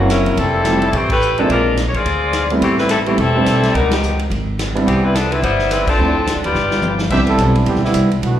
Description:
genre	jazz, big band swing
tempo	214 BPM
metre	4/4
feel	swing 59% on 8ths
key	C major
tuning	A4 = 440 Hz
part	bright saxophone section	melody	0.0-7.0 s	E3 to D5	-17 LUFS	left 2 dB	slapback echo
part	warm concert grand piano	accompaniment	0.0-7.8 s	F3 to B4	-18 LUFS	right 2 dB	slapback echo
part	upright bass	bass	0.0-8.4 s	E1 to F2	-19 LUFS	equal	none
part	swinging big-band drum kit	drums	0.1-8.3 s	crash cymbal, hi-hat, kick drum, ride cymbal, snare drum, toms	-24 LUFS	equal	none
part	clear trumpet section	stabs	7.1-7.2 s	G4 to E5	-26 LUFS	right 1 dB	none
part	warm trombone section	second line	7.3-8.4 s	D3 to A4	-18 LUFS	right 3 dB	slapback echo
room	light reverb, studio ambience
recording	live gig heard through the venue's PA, club reverb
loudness	-13 LUFS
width	side -11 dB against mid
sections	0.0-7.1 A section; 7.1-8.4 B section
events	band accent 1.1, 3.9, 5.8; drum fill 6.5-7.1; trombone section solo 7.1-8.4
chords	0.4 Fmaj9; 1.5 Bb9; 2.6 Am7; 3.7 Db9; 4.9 Cmaj7; 6.0 Dm7; 6.5 G7; 7.1 Cmaj7

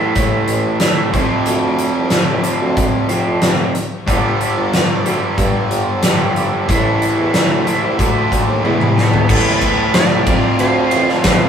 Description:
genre	classic rock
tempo	92 BPM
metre	4/4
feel	straight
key	A minor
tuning	A4 = 440 Hz
part	distorted electric guitar	riff	0.0-11.5 s	G2 to F4	-22 LUFS	left 5 dB	overdrive
part	raw garage guitar	riff	0.0-11.5 s	E2 to D4	-18 LUFS	right 3 dB	overdrive, spring reverb
part	clear tuba	bass	0.2-11.5 s	F1 to A2	-23 LUFS	equal	none
part	huge arena drum kit	drums	0.2-11.4 s	crash cymbal, hi-hat, kick drum, ride cymbal, snare drum, toms	-16 LUFS	left 1 dB	none
part	clean lap steel guitar	melody	9.0-11.5 s	A4 to D5	-21 LUFS	right 2 dB	none
part	nasal lead guitar with a parked wah	second line	9.0-11.5 s	B3 to F4	-25 LUFS	right 2 dB	none
part	tonewheel organ	sustained chords	9.3-11.5 s	none	barely audible	none	none
room	moderate stone room reverb, RT60 0.9 s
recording	rough rehearsal-room recording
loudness	-13 LUFS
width	side -8 dB against mid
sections	0.0-9.3 A section; 9.3-11.5 B section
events	drum fill 8.6-9.3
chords	0.0 Am; 1.1 F6; 4.1 G; 6.7 Am; 8.0 Dm; 8.6 E; 9.3 Amadd9; 10.3 F

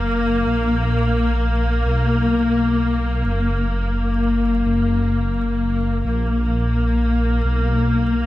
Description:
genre	trip hop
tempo	86 BPM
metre	4/4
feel	swing 59% on 16ths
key	unclear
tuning	A4 = 440 Hz
part	clear symphonic string section	sustained chords	0.0-8.3 s	Bb3	-20 LUFS	left 2 dB	stereo widening
part	dark detuned saw bass	bass	0.0-8.3 s	Gb1 to Cb2	-20 LUFS	equal	none
room	light reverb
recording	vinyl crackle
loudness	-17 LUFS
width	side -15 dB against mid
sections	0.0-8.3 A section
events	none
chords	0.5 N.C.; 3.3 Gb; 6.0 N.C.

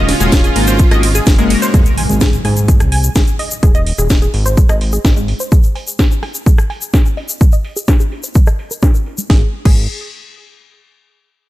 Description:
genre	progressive house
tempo	127 BPM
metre	4/4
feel	straight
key	Ab mixolydian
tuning	A4 = 441 Hz
part	soft supersaw	melody	0.0-1.6 s	Db4 to F4	-20 LUFS	right 2 dB	sidechain pumping, ping-pong delay
part	dark studio violin section	second line	0.0-1.6 s	F4	-26 LUFS	right 2 dB	sidechain pumping, tape echo
part	lush unison pad	sustained chords	0.0-1.7 s	Db3 to F5	-28 LUFS	right 1 dB	none
part	chorused polysynth	stabs	0.0-1.7 s	Ab3 to Db5	-19 LUFS	left 4 dB	cassette tape, sidechain pumping, tape echo
part	fat analog bass	bass	0.0-5.3, 9.3-9.9 s	Eb1 to Ab2	-16 LUFS	equal	sidechain pumping
part	house drum kit	drums	0.1-9.7 s	crash cymbal, hi-hat, ride cymbal, rim click, snare drum	-20 LUFS	equal	low-pass filter on hats, low-pass filter on cymbals, low-pass filter on snare
part	wide unison pluck	arpeggios	0.2-9.9 s	Ab3 to Eb6	-23 LUFS	equal	sidechain pumping, tape echo
part	egg shaker	percussion	0.2-9.3 s	none	-24 LUFS	left 4 dB	none
part	electronic kick drum	drums	0.3-9.7 s	none	-10 LUFS	equal	none
part	impact	sound effects	1.7-3.6 s	none	-22 LUFS	equal	none
room	digital ambience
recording	none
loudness	-10 LUFS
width	side -16 dB against mid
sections	0.0-1.7 A section; 1.7-9.3 B section; 9.3-11.2 C section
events	drop 0.0-1.7; impact 1.7-3.6; filter sweep on drum 1.7-9.3; filter sweep on synth pluck 1.7-9.3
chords	0.0 Gbadd9; 1.7 Ab5; 9.3 N.C.

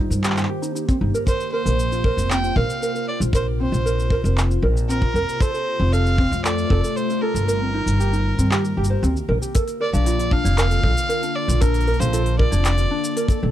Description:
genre	folktronica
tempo	116 BPM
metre	4/4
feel	straight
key	Bb major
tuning	A4 = 439 Hz
part	warbly tape-like pad	sustained chords	0.0-13.5 s	C3 to A5	-29 LUFS	left 1 dB	chorus, built-in reverb
part	ukulele	arpeggios	0.0-13.5 s	C4 to C5	-26 LUFS	right 1 dB	none
part	upright bass	bass	0.0-13.5 s	F1 to G2	-20 LUFS	equal	none
part	organic electronic drum kit	drums	0.1-13.4 s	handclaps, hi-hat, shaker	-28 LUFS	equal	none
part	kick drum	drums	0.9-13.4 s	none	-19 LUFS	equal	none
part	clear violin	melody	1.3-13.4 s	Bb4 to G5	-26 LUFS	equal	vintage 12-bit sampler grit, tape echo
part	toy piano	second line	9.5-12.6 s	F4 to F5	-31 LUFS	right 6 dB	tape echo
room	little or no reverb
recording	dry, close 1970s-style studio recording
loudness	-18 LUFS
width	side -12 dB against mid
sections	0.0-9.5 A section; 9.5-13.5 B section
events	kick drops out 7.5-9.5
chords	0.0 Eb6/G; 1.3 Bbsus2; 5.4 F; 7.5 Eb6/G; 9.5 Bbmaj7

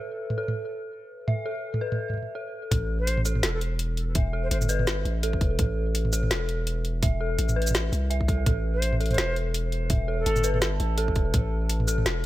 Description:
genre	half-time drum and bass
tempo	167 BPM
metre	4/4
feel	swing 57% on 16ths, half-time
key	unclear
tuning	A4 = 441 Hz
part	dark detuned synth bell	arpeggios	0.0-12.3 s	A4 to A5	-32 LUFS	left 1 dB	chorus, phaser, vintage 12-bit sampler grit, digital delay
part	drum and bass drum kit	drums	0.3-12.3 s	hi-hat, shaker, snare drum, toms	-28 LUFS	right 1 dB	none
part	long sustained 808-style bass	bass	2.7-12.3 s	E1 to C2	-26 LUFS	equal	none
part	electronic kick drum	drums	2.7-11.4 s	none	-25 LUFS	equal	none
part	hollow concert flute	melody	3.0-4.6, 8.7-10.7 s	A4 to C5	-34 LUFS	equal	vintage 12-bit sampler grit, digital delay
room	digital ambience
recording	none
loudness	-24 LUFS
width	side -15 dB against mid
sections	0.0-2.7 A section; 2.7-12.3 B section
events	filter sweep on synth bell 0.0-2.7; drop 2.7-12.3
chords	0.0 A5

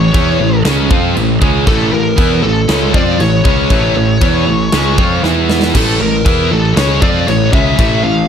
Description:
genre	heavy metal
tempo	118 BPM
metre	4/4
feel	straight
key	unclear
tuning	A4 = 440 Hz
part	high-gain lead guitar	melody	0.0-8.3 s	A4 to F5	-18 LUFS	left 3 dB	distortion
part	heavy high-gain guitar	riff	0.0-8.2 s	A2 to F4	-19 LUFS	left 14 dB	distortion
part	overdriven electric guitar	riff	0.0-5.7 s	A2 to F4	-18 LUFS	equal	none
part	scooped high-gain guitar	riff	0.0-8.2 s	A2 to F4	-18 LUFS	right 12 dB	distortion
part	overdriven picked electric bass	bass	0.0-8.3 s	A1 to F2	-16 LUFS	equal	none
part	tight metal drum kit	drums	0.1-7.9 s	china cymbal, crash cymbal, kick drum, snare drum	-16 LUFS	equal	none
room	studio reverb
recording	dark, warm production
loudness	-10 LUFS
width	side -8 dB against mid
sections	0.0-5.7 A section; 5.7-8.3 A section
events	drum fill 5.2-5.7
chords	0.0 A; 5.2 E5; 5.7 A

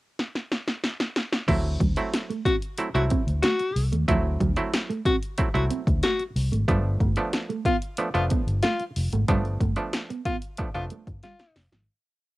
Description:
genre	funk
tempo	92 BPM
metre	4/4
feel	straight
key	unclear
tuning	A4 = 441 Hz
part	punchy analog drum machine	drums	0.2-11.9 s	crash cymbal, hi-hat, kick drum, snare drum	-27 LUFS	equal	cassette tape
part	mellow electric guitar	riff	1.5-11.8 s	F3 to C4	-30 LUFS	right 4 dB	analog chorus, cassette tape
part	muted clav	stabs	1.5-11.5 s	F3 to E4	-29 LUFS	right 2 dB	overdrive, cassette tape
part	vintage muted fingered electric bass	bass	1.5-11.9 s	F1 to Eb2	-25 LUFS	equal	none
part	warm tenor saxophone	second line	2.5-11.7 s	F4 to F#4	-25 LUFS	left 3 dB	cassette tape
room	light reverb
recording	home recording on cassette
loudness	-23 LUFS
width	side -18 dB against mid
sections	0.0-1.5 pickup bar; 1.5-11.9 A section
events	drum fill 0.2-1.5, 11.2-11.9; fade-out 9.3-11.9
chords	0.0 N.C.; 1.5 D9; 6.7 G9

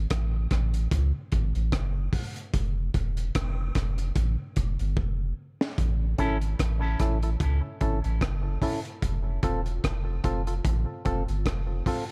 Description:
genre	dub reggae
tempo	74 BPM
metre	4/4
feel	swing 56% on 16ths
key	unclear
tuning	A4 = 441 Hz
part	soft dub sub bass	bass	0.0-11.8 s	E1 to C#2	-29 LUFS	equal	none
part	crunchy breakbeat drum kit	drums	0.1-12.1 s	hi-hat, kick drum, rim click, snare drum	-32 LUFS	equal	none
part	electric guitar with an envelope filter	accompaniment	6.2-6.4 s	C#4 to A4	-39 LUFS	equal	tape echo
part	percussive organ stab	stabs	6.2-12.0 s	C4 to A4	-36 LUFS	equal	chorus, tape echo
room	studio reverb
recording	echo-heavy mix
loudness	-28 LUFS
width	mono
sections	0.0-5.8 A section; 5.8-12.1 B section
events	break 0.0-5.8; drum fill 5.0-5.8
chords	0.0 N.C.; 5.8 A; 9.0 F

